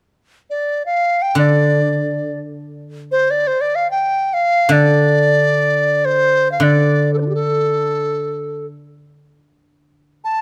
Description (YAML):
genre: chinese traditional, Chinese chamber ensemble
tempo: free time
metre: none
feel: none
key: D yu mode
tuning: A4 = 440 Hz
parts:
  - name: bright reedy large dizi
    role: melody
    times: 0.5-10.4 s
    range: D4 to A5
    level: -18 LUFS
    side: equal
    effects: none
  - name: guzheng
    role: accompaniment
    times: 1.4-8.7 s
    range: D3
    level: -20 LUFS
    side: equal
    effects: none
room: light reverb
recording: close, detailed microphones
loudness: -16 LUFS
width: mono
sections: 0.0-10.4 A section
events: none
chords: none